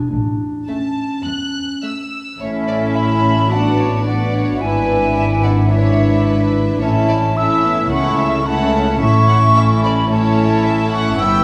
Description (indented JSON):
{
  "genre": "quick classical-period movement for symphony orchestra",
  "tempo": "109 BPM",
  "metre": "4/4",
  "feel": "rubato",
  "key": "A major",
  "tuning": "A4 = 440 Hz",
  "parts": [
    { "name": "mellow clarinet", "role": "second line", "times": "0.0-2.1 s", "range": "C#4 to D4", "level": "-25 LUFS", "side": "equal", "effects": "none" },
    { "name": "warm studio cello section", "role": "bass", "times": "0.1-11.4 s", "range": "E2 to C#3", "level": "-23 LUFS", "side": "equal", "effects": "none" },
    { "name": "warm studio double bass section", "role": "bass", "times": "0.1-11.4 s", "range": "G1 to C#2", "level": "-22 LUFS", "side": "equal", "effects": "none" },
    { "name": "warm studio violin section", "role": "melody", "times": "0.7-11.4 s", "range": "B4 to F#6", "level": "-28 LUFS", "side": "equal", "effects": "none" },
    { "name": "dark studio violin section", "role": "second line", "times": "0.7-11.4 s", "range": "A4 to E5", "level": "-28 LUFS", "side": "equal", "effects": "none" },
    { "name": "warm studio viola section", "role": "accompaniment", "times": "0.7-11.4 s", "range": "A3 to F#4", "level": "-24 LUFS", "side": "equal", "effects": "none" },
    { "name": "silver concert flute", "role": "second line", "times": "2.4-11.4 s", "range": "E5 to E6", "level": "-21 LUFS", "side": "equal", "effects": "none" },
    { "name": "mellow French horn section", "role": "sustained chords", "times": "2.4-11.4 s", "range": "A3 to E4", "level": "-24 LUFS", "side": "equal", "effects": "none" }
  ],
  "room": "wet concert hall reverb, RT60 2.3 s",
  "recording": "none",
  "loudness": "-16 LUFS",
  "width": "mono",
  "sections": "0.0-2.4 A section; 2.4-11.4 B section",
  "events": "none",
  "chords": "0.1 A; 3.5 Bm7/A; 4.6 E7/G#; 6.8 A; 7.9 A/C#; 9.0 A"
}